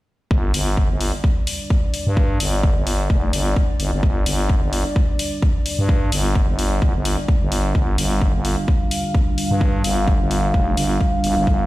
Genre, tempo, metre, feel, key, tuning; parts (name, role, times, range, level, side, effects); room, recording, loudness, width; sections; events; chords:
bass house; 129 BPM; 4/4; swing 57% on 16ths; A4 = 441 Hz
dark analog pad; sustained chords; 0.9-11.7 s; G3 to F5; -25 LUFS; equal; chorus, sidechain pumping
growling FM bass; bass; 0.3-11.7 s; F1 to G2; -20 LUFS; equal; tube saturation, sidechain pumping
electronic kick drum; drums; 0.3-11.6 s; -18 LUFS; equal
electronic hi-hat; drums; 0.5-11.3 s; -27 LUFS; left 2 dB
digital ambience; played on a big sound system in a bare room, stone room reverb; -17 LUFS; side -17 dB against mid
0.3-11.7 A section
0.3 G5